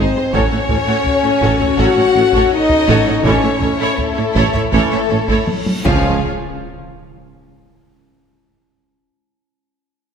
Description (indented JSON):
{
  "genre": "cinematic, epic orchestral film score",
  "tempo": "80 BPM",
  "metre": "4/4",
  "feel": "straight",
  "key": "unclear",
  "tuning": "A4 = 442 Hz",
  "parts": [
    { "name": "rich symphonic violin section", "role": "melody", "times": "0.0-6.3 s", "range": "A4 to F#5", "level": "-22 LUFS", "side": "left 3 dB", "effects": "none" },
    { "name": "rich studio violin section", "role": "second line", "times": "0.0-6.3 s", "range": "D#4 to F#5", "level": "-25 LUFS", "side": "left 1 dB", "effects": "none" },
    { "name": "clear symphonic viola section", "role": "accompaniment", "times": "0.0-6.3 s", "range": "E#4 to C#5", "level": "-23 LUFS", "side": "right 1 dB", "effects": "none" },
    { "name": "clear symphonic string section", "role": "sustained chords", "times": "0.0-6.3 s", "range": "G#3 to C#5", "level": "-26 LUFS", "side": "left 3 dB", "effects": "none" },
    { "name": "mellow French horn section", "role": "sustained chords", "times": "0.0-6.2 s", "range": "E#3 to F#4", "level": "-17 LUFS", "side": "left 4 dB", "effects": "none" },
    { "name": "clear symphonic double bass section", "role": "bass", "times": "0.0-6.3 s", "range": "A1 to C#2", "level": "-23 LUFS", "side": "right 4 dB", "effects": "none" },
    { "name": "dark tuba", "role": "bass", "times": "0.0-6.2 s", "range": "A1 to C#2", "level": "-23 LUFS", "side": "right 4 dB", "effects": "none" },
    { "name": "rich symphonic cello section", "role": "bass", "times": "0.0-6.3 s", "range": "C#2 to A2", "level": "-22 LUFS", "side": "right 4 dB", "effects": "none" },
    { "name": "bright trombone section", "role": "sustained chords", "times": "0.3-6.2 s", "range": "E3 to C#4", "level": "-27 LUFS", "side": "right 3 dB", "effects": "none" },
    { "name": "taiko ensemble", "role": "drums", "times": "0.3-7.3 s", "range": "none", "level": "-22 LUFS", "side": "equal", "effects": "none" },
    { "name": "reverse cymbal and impact", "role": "sound effects", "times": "5.2-8.9 s", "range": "none", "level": "-32 LUFS", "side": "equal", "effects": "none" },
    { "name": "timpani", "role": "percussion", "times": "5.9-6.2 s", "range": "C#3", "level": "-29 LUFS", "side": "equal", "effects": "none" }
  ],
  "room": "moderate scoring stage reverb, RT60 2.0 s",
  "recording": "none",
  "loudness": "-12 LUFS",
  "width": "side -7 dB against mid",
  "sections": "0.0-6.2 A section; 6.2-9.3 B section",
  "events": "reverse cymbal 5.2-6.2; drum fill 5.5-6.2; impact 6.2-9.3",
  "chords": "0.3 F#m/A; 3.2 A; 5.9 C#; 6.2 N.C."
}